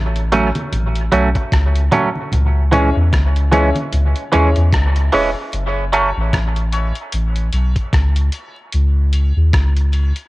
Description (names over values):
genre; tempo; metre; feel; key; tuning
dub reggae; 75 BPM; 4/4; swing 58% on 16ths; C# minor; A4 = 445 Hz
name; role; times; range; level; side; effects
soft dub sub bass; bass; 0.0-10.1 s; E1 to E2; -15 LUFS; equal; none
dusty soul sampler-style drum kit; drums; 0.2-10.3 s; hi-hat, kick drum, rim click; -22 LUFS; equal; cassette tape
semi-hollow electric guitar; accompaniment; 0.3-6.1 s; E3 to C#4; -19 LUFS; right 3 dB; high-pass filter, cassette tape, dub echo
congas; percussion; 0.3-10.3 s; none; -28 LUFS; right 1 dB; none
clear upright piano; stabs; 2.7-10.1 s; C#4 to C#5; -24 LUFS; left 3 dB; high-pass filter, cassette tape, dub echo
room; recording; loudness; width
light reverb, small room reverb; home recording on cassette; -14 LUFS; side -19 dB against mid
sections
0.0-10.3 A section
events
break 0.0-2.3, 5.5-10.3; filter sweep 2.3-10.3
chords
0.0 F#m; 2.3 C#m; 5.5 F#m; 8.7 C#m